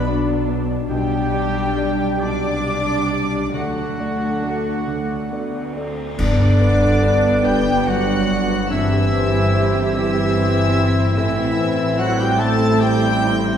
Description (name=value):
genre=cinematic, emotional film score for orchestra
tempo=45-49 BPM (dotted quarters)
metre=6/8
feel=rubato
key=G major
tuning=A4 = 440 Hz
part: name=rich studio violin section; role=melody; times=0.0-13.6 s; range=F#5 to A6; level=-30 LUFS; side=left 3 dB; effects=none
part: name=silver concert flute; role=second line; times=0.0-13.3 s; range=D5 to D6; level=-26 LUFS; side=equal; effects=none
part: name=warm oboe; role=second line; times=0.0-13.3 s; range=D4 to D5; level=-29 LUFS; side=equal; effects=none
part: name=warm studio violin section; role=second line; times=0.0-13.6 s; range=F#4 to A5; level=-30 LUFS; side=left 2 dB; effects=none
part: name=warm concert grand piano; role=accompaniment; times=0.0-13.6 s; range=B1 to D5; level=-27 LUFS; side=equal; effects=none
part: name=warm studio viola section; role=accompaniment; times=0.0-13.6 s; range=G3 to G4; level=-24 LUFS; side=right 1 dB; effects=none
part: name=mellow French horn section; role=sustained chords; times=0.0-13.6 s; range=D3 to D4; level=-24 LUFS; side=left 2 dB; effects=none
part: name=concert harp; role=arpeggios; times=0.0-13.6 s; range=G2 to D6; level=-26 LUFS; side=left 2 dB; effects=none
part: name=warm studio cello section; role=bass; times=0.0-13.6 s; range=G2 to D4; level=-26 LUFS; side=right 1 dB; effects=none
part: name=warm studio double bass section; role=bass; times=0.0-13.6 s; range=G1 to D2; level=-25 LUFS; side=right 2 dB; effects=none
part: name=cymbal swell, clash cymbals and concert bass drum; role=percussion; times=3.5-7.8 s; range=none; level=-25 LUFS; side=equal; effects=none
room=wet scoring stage reverb, RT60 1.8 s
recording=heard from further back in the room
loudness=-16 LUFS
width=side -8 dB against mid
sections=0.0-6.2 A section; 6.2-13.6 B section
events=band accent 6.2-7.0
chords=0.0 Bm; 0.9 G/B; 3.5 D; 6.2 G; 8.7 C/G; 11.2 Am